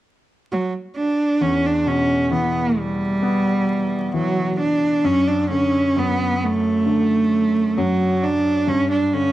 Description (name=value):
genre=pop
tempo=66 BPM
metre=4/4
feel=straight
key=unclear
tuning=A4 = 439 Hz
part: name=rich cello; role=melody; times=0.5-9.3 s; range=F#3 to D4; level=-18 LUFS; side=right 2 dB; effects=cassette tape, plate reverb
part: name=warm grand piano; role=accompaniment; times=1.4-9.3 s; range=E2 to B3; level=-24 LUFS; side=left 3 dB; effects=cassette tape, plate reverb
room=moderate studio reverb, RT60 0.5 s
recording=home recording on cassette, vinyl crackle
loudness=-17 LUFS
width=side -14 dB against mid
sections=0.0-1.4 A section; 1.4-9.3 B section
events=none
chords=0.0 N.C.; 1.4 Em; 5.0 Bm9/F# (rootless); 8.7 G5